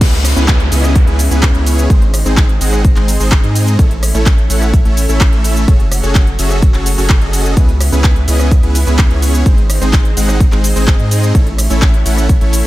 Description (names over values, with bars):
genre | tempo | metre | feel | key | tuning
EDM, festival progressive house | 127 BPM | 4/4 | straight | C# minor | A4 = 440 Hz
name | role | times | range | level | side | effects
lush unison pad | sustained chords | 0.0-12.7 s | C#3 to F#4 | -25 LUFS | equal | chorus, sidechain pumping
supersaw chords | riff | 0.0-12.7 s | G#3 to F#5 | -18 LUFS | equal | sidechain pumping, digital delay
saturated sub bass | bass | 0.0-12.6 s | F#1 to G#2 | -14 LUFS | equal | sidechain pumping
big-room dance drum kit | drums | 0.0-12.7 s | crash cymbal, handclaps, hi-hat, ride cymbal, rim click, shaker | -20 LUFS | equal | none
electronic kick drum | drums | 0.0-12.4 s | none | -10 LUFS | equal | none
downlifter | sound effects | 0.0-3.8 s | none | -24 LUFS | equal | none
room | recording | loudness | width
digital ambience | none | -9 LUFS | side -16 dB against mid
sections
0.0-12.7 A section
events
drop 0.0-12.7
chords
0.0 C#m7; 1.9 G#; 3.8 A; 5.7 F#madd9; 7.6 C#m7; 9.5 G#; 11.3 A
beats
| 0.01 0.48 0.96 1.43 | 1.90 2.37 2.85 3.32 | 3.79 4.26 4.74 5.21 | 5.68 6.15 6.62 7.10 | 7.57 8.04 8.52 8.99 | 9.46 9.93 10.40 10.88 | 11.35 11.82 12.29